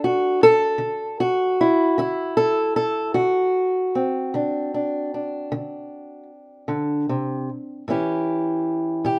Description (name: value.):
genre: acoustic country blues, solo or duo.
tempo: 51 BPM (dotted quarters).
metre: 12/8.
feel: straight.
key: unclear.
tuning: A4 = 439 Hz.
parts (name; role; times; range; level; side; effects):
fingerpicked old ladder-braced acoustic guitar; solo; 0.0-9.2 s; A2 to A4; -22 LUFS; equal; none.
room: little or no reverb.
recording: none.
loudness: -22 LUFS.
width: mono.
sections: 0.0-9.2 A section.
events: none.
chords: 0.0 D7; 7.9 A7.